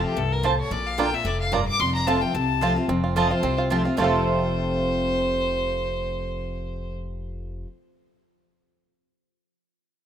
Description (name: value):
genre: bluegrass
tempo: 220 BPM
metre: 4/4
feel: swing 54% on 8ths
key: F major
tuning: A4 = 441 Hz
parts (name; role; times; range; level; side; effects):
- clear fiddle; melody; 0.0-6.9 s; G4 to D6; -26 LUFS; left 1 dB; none
- picked steel-string acoustic guitar; accompaniment; 0.0-7.7 s; F2 to F4; -27 LUFS; left 2 dB; none
- upright bass; bass; 0.0-7.6 s; F1 to C2; -29 LUFS; left 1 dB; none
- bluegrass banjo; melody; 0.4-7.7 s; A3 to A4; -29 LUFS; right 6 dB; none
- mandolin; stabs; 0.4-7.7 s; Bb3 to Bb5; -28 LUFS; right 6 dB; none
room: moderate plate reverb, RT60 2.9 s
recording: rough home demo mix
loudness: -21 LUFS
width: side -9 dB against mid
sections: 0.0-2.9 A section; 2.9-4.0 B section; 4.0-6.2 C section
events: none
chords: 0.0 F; 0.7 Bb; 1.8 F